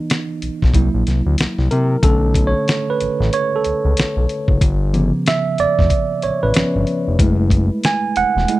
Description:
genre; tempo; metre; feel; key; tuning
R&B, neo-soul; 93 BPM; 4/4; swing 60% on 16ths; unclear; A4 = 436 Hz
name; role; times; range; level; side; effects
tine electric piano; accompaniment; 0.0-8.6 s; C#3 to G#5; -18 LUFS; moving between left 2 dB and right 6 dB; auto-pan
dusty soul sampler-style drum kit; drums; 0.1-8.6 s; hi-hat, kick drum, snare drum; -18 LUFS; left 1 dB; none
smooth synth bass; bass; 0.4-8.5 s; E1 to C3; -18 LUFS; left 1 dB; none
room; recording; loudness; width
little or no reverb; dry, close 1970s-style studio recording; -14 LUFS; side -17 dB against mid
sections
0.0-8.6 A section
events
tine electric piano solo 0.0-8.6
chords
0.0 C#m7 (rootless); 0.7 C7#11; 2.0 Bm7; 4.6 G7#11; 7.2 F#m7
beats
0.09 0.74 1.38 | 2.03 2.67 3.32 3.96 | 4.61 5.25 5.90 6.55 | 7.19 7.84 8.48

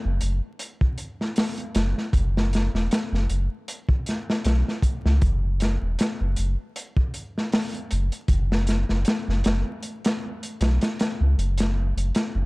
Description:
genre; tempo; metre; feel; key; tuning
trip hop; 78 BPM; 4/4; swing 55% on 16ths; unclear; A4 = 440 Hz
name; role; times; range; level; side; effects
round analog bass; bass; 0.1-12.5 s; E1 to C#2; -22 LUFS; equal; tube saturation
crunchy breakbeat drum kit; drums; 0.2-12.3 s; hi-hat, kick drum, snare drum; -24 LUFS; equal; none
room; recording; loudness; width
little or no reverb; dark, warm production, vinyl crackle; -22 LUFS; side -24 dB against mid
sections
0.0-12.5 A section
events
none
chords
none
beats
0.60 1.36 | 2.13 2.90 3.67 4.44 | 5.21 5.98 6.75 7.52 | 8.29 9.06 9.83 10.60 | 11.37 12.13

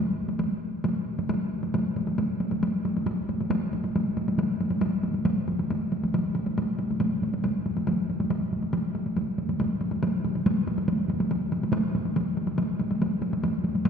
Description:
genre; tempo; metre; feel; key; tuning
japanese traditional; 138 BPM; 4/4; straight; none; none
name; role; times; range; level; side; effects
taiko ensemble; percussion; 0.3-13.9 s; none; -25 LUFS; equal; none
room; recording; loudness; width
wet concert hall reverb, RT60 2.0 s; recorded in a church or concert hall; -25 LUFS; side -6 dB against mid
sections
0.0-1.7 A section; 1.7-13.9 B section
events
speeding up 0.0-13.9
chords
none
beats
0.41 0.85 1.30 | 1.74 2.19 2.63 3.07 | 3.51 3.95 4.39 4.83 | 5.26 5.70 6.14 6.57 | 7.01 7.44 7.87 8.31 | 8.74 9.17 9.60 10.03 | 10.46 10.88 11.31 11.74 | 12.16 12.59 13.01 13.43 | 13.85

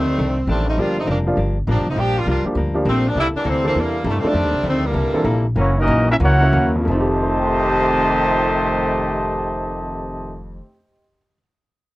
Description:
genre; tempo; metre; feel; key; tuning
jazz, big band swing; 172-202 BPM; 4/4; swing 63% on 8ths; F mixolydian; A4 = 440 Hz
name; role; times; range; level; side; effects
warm saxophone section; melody; 0.0-5.5 s; D3 to G4; -20 LUFS; equal; none
hollow-body jazz guitar; accompaniment; 0.0-10.7 s; F2 to A4; -26 LUFS; left 2 dB; none
upright bass; bass; 0.0-10.6 s; F1 to G2; -21 LUFS; equal; none
warm upright piano; accompaniment; 0.8-11.4 s; F2 to C7; -24 LUFS; equal; none
brilliant trombone section; second line; 4.9-10.4 s; F2 to Gb4; -23 LUFS; equal; none
mellow trumpet section; melody; 5.6-10.4 s; Bb3 to A5; -20 LUFS; equal; none
room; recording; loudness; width
light reverb; worn, warbling old tape, cassette tape, warbly pitch drift; -16 LUFS; side -18 dB against mid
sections
0.0-5.6 A section; 5.6-6.9 B section; 6.9-9.7 C section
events
slowing down 4.3-6.9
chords
0.0 F13; 0.8 Gm7; 3.2 C13; 5.6 Gb7; 6.9 F9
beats
0.18 0.47 | 0.77 1.07 1.37 1.67 | 1.97 2.26 2.56 2.86 | 3.16 3.45 3.75 4.05 | 4.34 4.64 4.94 5.25 | 5.56 5.87 6.20 6.53 | 6.87 7.22 7.57 7.92 | 8.26 8.61 8.96 9.31

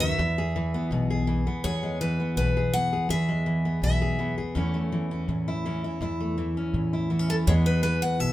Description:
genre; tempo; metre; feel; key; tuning
honky-tonk and classic country; 165 BPM; 4/4; straight; E major; A4 = 440 Hz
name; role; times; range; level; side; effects
picked steel-string acoustic guitar; melody; 0.0-4.3, 7.3-8.3 s; A4 to F#5; -29 LUFS; left 1 dB; none
picked steel-string acoustic guitar; accompaniment; 0.0-8.3 s; E2 to G#4; -26 LUFS; equal; none
upright bass; bass; 0.0-8.3 s; B1 to A2; -29 LUFS; equal; none
room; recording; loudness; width
wet studio reverb, RT60 0.7 s; minimal, uncompressed stereo recording; -24 LUFS; side -15 dB against mid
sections
0.0-1.6 A section; 1.6-7.5 B section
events
none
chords
0.2 E; 4.6 A/E; 7.5 E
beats
| 0.19 0.55 0.91 1.28 | 1.64 2.00 2.37 2.73 | 3.10 3.46 3.83 4.19 | 4.55 4.92 5.28 5.65 | 6.01 6.38 6.74 7.10 | 7.47 7.83 8.20

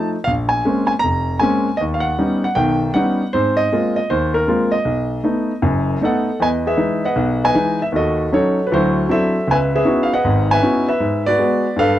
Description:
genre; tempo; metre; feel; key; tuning
jazz; 156 BPM; 4/4; swing 65% on 8ths; E major from 6.4 s; A4 = 440 Hz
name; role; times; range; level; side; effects
warm baby grand piano; solo; 0.0-12.0 s; F1 to Bb5; -15 LUFS; equal; none
room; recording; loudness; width
light reverb; dry, close 1970s-style studio recording; -15 LUFS; side -12 dB against mid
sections
0.0-6.4 A section; 6.4-12.0 B section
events
none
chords
0.3 Bbm9; 1.8 Eb7alt; 3.3 Ab69; 4.9 B7; 6.4 Emaj7; 7.9 D#m7b5; 8.7 D9; 9.5 C#m11; 11.0 G#m7b5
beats
| 0.26 0.64 1.02 1.41 | 1.79 2.18 2.56 2.94 | 3.33 3.71 4.09 4.48 | 4.86 5.24 5.63 6.01 | 6.39 6.78 7.16 7.54 | 7.93 8.31 8.70 9.08 | 9.46 9.85 10.23 10.62 | 11.00 11.39 11.77

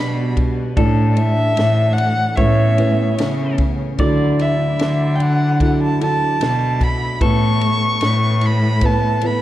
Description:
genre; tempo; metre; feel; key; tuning
acoustic folk-pop ballad; 75 BPM; 4/4; straight; unclear; A4 = 439 Hz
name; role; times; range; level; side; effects
dark violin; melody; 0.0-9.4 s; D5 to C#6; -21 LUFS; equal; none
pedal steel guitar; second line; 0.0-9.4 s; A4 to D5; -28 LUFS; left 1 dB; none
felt-muted upright piano; accompaniment; 0.0-9.4 s; A1 to D5; -22 LUFS; right 3 dB; none
muted chamber string section; sustained chords; 0.0-9.4 s; E3 to B4; -29 LUFS; left 2 dB; none
warm cello; bass; 0.0-9.2 s; A2 to D3; -18 LUFS; left 1 dB; none
compact cocktail drum kit; drums; 0.4-9.4 s; kick drum, ride cymbal, snare drum; -22 LUFS; equal; none
room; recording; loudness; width
light reverb; dark, warm production; -14 LUFS; side -14 dB against mid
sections
0.0-9.4 A section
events
none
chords
0.0 G/B; 0.8 Asus4; 2.4 Aadd9; 4.0 Dadd9; 7.2 Asus2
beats
| 0.78 1.58 2.38 3.19 | 4.00 4.80 5.61 6.41 | 7.22 8.02 8.82

